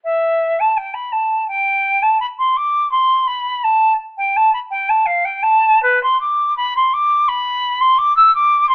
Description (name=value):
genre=classical, baroque-style fantasia for unaccompanied flute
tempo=84 BPM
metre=4/4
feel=rubato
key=C major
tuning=A4 = 440 Hz
part: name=concert flute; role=solo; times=0.0-8.7 s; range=B4 to E6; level=-13 LUFS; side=equal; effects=none
room=light reverb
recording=telephone sound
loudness=-13 LUFS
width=side -24 dB against mid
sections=0.0-8.7 A section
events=none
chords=none